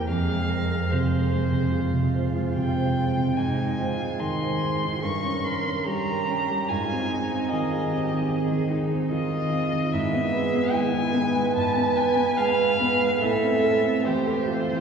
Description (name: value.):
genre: classical, slow romantic movement for piano trio.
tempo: 73 BPM.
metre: 4/4.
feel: rubato.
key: unclear.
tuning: A4 = 439 Hz.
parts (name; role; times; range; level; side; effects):
muted violin; melody; 0.0-14.8 s; C5 to Db6; -28 LUFS; left 1 dB; none.
muted cello; second line; 0.0-14.8 s; Eb4 to B4; -29 LUFS; right 4 dB; none.
warm concert grand piano; accompaniment; 0.0-14.8 s; E2 to C5; -24 LUFS; right 1 dB; none.
room: wet cathedral reverb, RT60 5.3 s.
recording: heard from further back in the room, studio ambience.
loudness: -22 LUFS.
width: side -6 dB against mid.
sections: 0.0-14.8 A section.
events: none.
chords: 0.1 Fm; 3.4 Ab; 5.0 Gdim; 6.7 Ab; 9.9 E/G#; 13.2 Am.